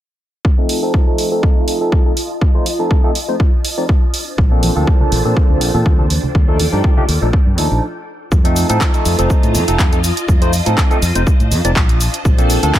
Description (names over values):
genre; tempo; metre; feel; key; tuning
filtered disco house; 122 BPM; 4/4; swing 54% on 16ths; F mixolydian; A4 = 436 Hz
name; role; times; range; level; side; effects
phased string machine; sustained chords; 0.4-12.8 s; D4 to A5; -25 LUFS; equal; ensemble chorus, phaser, sidechain pumping, low-pass filter
electronic kick drum; drums; 0.4-12.8 s; none; -13 LUFS; equal; overdrive
barky tine electric piano; accompaniment; 0.6-12.8 s; F3 to D5; -19 LUFS; equal; phaser, sidechain pumping, low-pass filter
house drum kit; drums; 0.7-12.8 s; cabasa, handclaps, hi-hat; -21 LUFS; right 1 dB; overdrive, sidechain pumping on hats, sidechain pumping on perc
fingered electric bass; bass; 4.4-12.7 s; F1 to Bb2; -16 LUFS; equal; sidechain pumping, low-pass filter
tambourine and congas; percussion; 4.4-7.8 s; none; -23 LUFS; right 1 dB; sidechain pumping on perc, low-pass filter on perc
room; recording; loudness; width
digital ambience; none; -12 LUFS; side -12 dB against mid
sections
0.4-8.3 A section; 8.3-12.8 B section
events
filter sweep 0.4-8.3; stop 7.8-8.3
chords
0.4 F7; 4.1 Bbmaj9; 6.1 Ebmaj9#11; 8.3 F7; 12.0 Bbmaj9